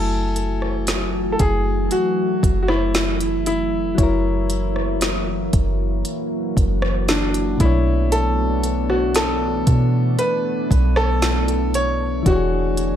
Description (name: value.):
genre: contemporary R&B.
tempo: 58 BPM.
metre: 4/4.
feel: straight.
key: F# minor.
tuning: A4 = 441 Hz.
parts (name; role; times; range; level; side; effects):
warm grand piano; melody; 0.0-13.0 s; D4 to C#5; -23 LUFS; left 1 dB; digital delay.
soft electric-piano-like synth keys; accompaniment; 0.0-13.0 s; B2 to G#5; -28 LUFS; left 6 dB; chorus.
deep dark ambient pad; sustained chords; 0.4-13.0 s; D3 to F#4; -25 LUFS; equal; chorus, built-in reverb, sidechain pumping.
soft 808-style bass; bass; 0.0-13.0 s; E1 to B2; -21 LUFS; equal; none.
smooth R&B drum kit; drums; 0.4-13.0 s; hi-hat, kick drum, rim click, snare drum; -22 LUFS; equal; none.
room: digital ambience.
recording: none.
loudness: -17 LUFS.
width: side -10 dB against mid.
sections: 0.0-13.0 A section.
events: none.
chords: 0.0 F#m9; 4.0 F#7; 7.6 Bm9; 12.3 E13.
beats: 0.88 1.92 2.95 | 3.98 5.02 6.05 7.09 | 8.12 9.16 10.19 11.22 | 12.26.